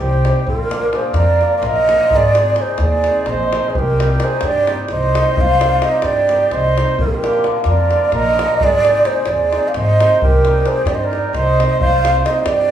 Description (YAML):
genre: balkan folk, Balkan wedding band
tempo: 259 BPM (eighths)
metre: 7/8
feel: straight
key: C minor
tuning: A4 = 440 Hz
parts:
  - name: breathy mellow ney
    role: melody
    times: 0.0-12.7 s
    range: Ab4 to F5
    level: -16 LUFS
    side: right 2 dB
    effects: none
  - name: mellow trumpet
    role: second line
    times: 0.0-12.7 s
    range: F4 to D5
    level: -22 LUFS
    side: right 3 dB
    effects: none
  - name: hammered dulcimer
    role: accompaniment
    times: 0.0-12.7 s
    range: D3 to G4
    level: -24 LUFS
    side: left 1 dB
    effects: none
  - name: upright bass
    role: bass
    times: 0.0-12.7 s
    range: Ab1 to G2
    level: -19 LUFS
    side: equal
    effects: none
  - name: davul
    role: percussion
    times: 0.2-12.6 s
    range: none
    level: -24 LUFS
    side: left 1 dB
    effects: none
room: wet large studio reverb, RT60 0.8 s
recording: band playing live in one room, small room ambience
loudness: -13 LUFS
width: side -10 dB against mid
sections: 0.5-12.7 A section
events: speeding up 0.0-12.7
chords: 0.5 Bb; 2.1 Ab; 3.7 Cm; 7.0 Bb; 8.6 Ab; 10.2 Cm